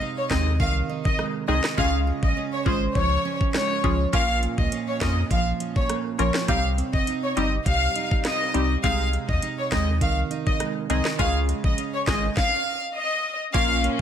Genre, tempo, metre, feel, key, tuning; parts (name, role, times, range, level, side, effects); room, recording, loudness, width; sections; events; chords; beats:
dancehall; 102 BPM; 4/4; straight; A4 = 440 Hz
nylon-string guitar; arpeggios; 0.0-14.0 s; Bb2 to Eb4; -30 LUFS; right 8 dB
warm symphonic violin section; melody; 0.2-13.7 s; C5 to F5; -26 LUFS; left 2 dB
wavetable chord stab; accompaniment; 0.3-14.0 s; G3 to Bb4; -28 LUFS; left 2 dB
warm sub bass; bass; 0.3-13.9 s; G1 to F2; -25 LUFS; equal
island pop drum kit; drums; 0.3-14.0 s; hi-hat, kick drum, rim click, snare drum; -26 LUFS; equal
clear studio string section; sustained chords; 13.5-14.0 s; F3 to Db4; -30 LUFS; left 4 dB; sidechain pumping
studio reverb; -21 LUFS; side -9 dB against mid
0.0-13.5 A section
break 0.0-4.1
0.0 Ab; 1.8 Db; 4.1 Bbm; 6.5 Cm; 8.8 Ab/C; 11.2 Db
0.01 0.60 1.19 | 1.78 2.37 2.96 3.54 | 4.13 4.72 5.31 5.90 | 6.49 7.07 7.66 8.25 | 8.84 9.43 10.02 10.60 | 11.19 11.78 12.37 12.96 | 13.54